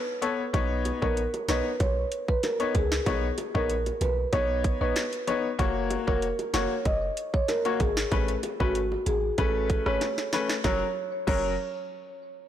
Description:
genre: dancehall.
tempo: 95 BPM.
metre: 4/4.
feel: straight.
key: F# major.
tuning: A4 = 439 Hz.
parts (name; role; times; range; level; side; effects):
clear grand piano; accompaniment; 0.2-11.5 s; F#3 to C#5; -30 LUFS; left 6 dB; sidechain pumping.
island pop drum kit; drums; 0.2-11.4 s; crash cymbal, hi-hat, kick drum, rim click, snare drum; -29 LUFS; right 1 dB; overdrive.
clean 808-style bass; bass; 0.5-11.6 s; E#1 to C#2; -31 LUFS; right 1 dB; none.
bongos; percussion; 0.5-11.6 s; none; -40 LUFS; right 3 dB; none.
marimba with soft mallets; melody; 1.0-11.6 s; F#4 to D#5; -30 LUFS; right 2 dB; ping-pong delay.
room: light reverb, small room ambience.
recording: blown-out, overdriven recording, overdrive.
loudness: -24 LUFS.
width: side -10 dB against mid.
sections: 0.0-10.6 A section; 10.6-12.5 B section.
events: drum fill 10.0-10.6.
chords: 0.0 Aadd9; 0.5 Badd9; 5.6 F#; 8.1 Aadd9; 10.6 F#.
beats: | 0.54 1.17 1.80 2.44 | 3.07 3.70 4.33 4.96 | 5.59 6.22 6.86 7.49 | 8.12 8.75 9.38 10.01 | 10.64 11.28.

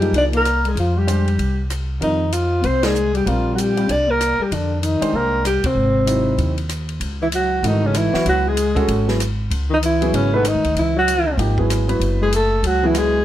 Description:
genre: modal jazz.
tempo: 192 BPM.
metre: 4/4.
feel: swing 62% on 8ths.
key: F dorian, C# minor from 7.0 s.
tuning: A4 = 442 Hz.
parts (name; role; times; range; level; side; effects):
breathy alto saxophone; melody; 0.0-13.2 s; B3 to D5; -19 LUFS; right 1 dB; plate reverb.
breathy tenor saxophone; second line; 0.0-13.2 s; B2 to D4; -24 LUFS; left 5 dB; none.
warm grand piano; accompaniment; 0.0-13.2 s; E3 to D5; -23 LUFS; right 1 dB; none.
upright bass; bass; 0.0-13.2 s; F#1 to Gb2; -21 LUFS; equal; none.
compact cocktail drum kit; drums; 0.0-13.0 s; hi-hat, kick drum, ride cymbal, rim click, snare drum; -29 LUFS; left 1 dB; none.
room: light reverb.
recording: none.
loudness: -16 LUFS.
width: side -12 dB against mid.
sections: 0.0-7.0 A section; 7.0-13.2 B section.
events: band accent 2.8, 5.6.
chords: 0.0 F13sus4; 5.8 Ab7b13; 7.0 C#m11; 12.0 F#m11.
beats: 0.14 0.45 | 0.76 1.07 1.39 1.70 | 2.01 2.32 2.63 2.95 | 3.26 3.57 3.88 4.20 | 4.51 4.82 5.13 5.45 | 5.76 6.07 6.38 6.69 | 7.01 7.32 7.63 7.94 | 8.26 8.57 8.88 9.19 | 9.51 9.82 10.13 10.44 | 10.76 11.07 11.38 11.70 | 12.01 12.32 12.63 12.95.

